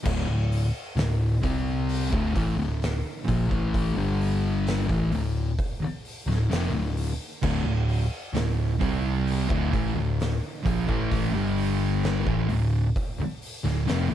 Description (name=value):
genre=stoner and doom metal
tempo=65 BPM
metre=4/4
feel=straight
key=D minor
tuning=A4 = 439 Hz
part: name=thick fuzz guitar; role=riff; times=0.0-14.1 s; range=D2 to C4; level=-27 LUFS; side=left 4 dB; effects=distortion
part: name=thick fuzz guitar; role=riff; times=0.0-14.1 s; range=D2 to C4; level=-30 LUFS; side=right 2 dB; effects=distortion
part: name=overdriven picked electric bass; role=bass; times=0.1-14.1 s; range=D1 to C2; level=-29 LUFS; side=right 1 dB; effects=none
part: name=oversized low-tuned drum kit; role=drums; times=0.1-14.1 s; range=crash cymbal, hi-hat, kick drum, snare drum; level=-31 LUFS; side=equal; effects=none
part: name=thick fuzz guitar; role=riff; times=7.4-14.1 s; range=D2 to C4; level=-30 LUFS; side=right 10 dB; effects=distortion
room=little or no reverb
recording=none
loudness=-23 LUFS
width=side -11 dB against mid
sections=0.0-14.1 A section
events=none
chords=0.0 D5; 4.0 G5; 4.9 Dm; 11.3 G5; 12.3 Dm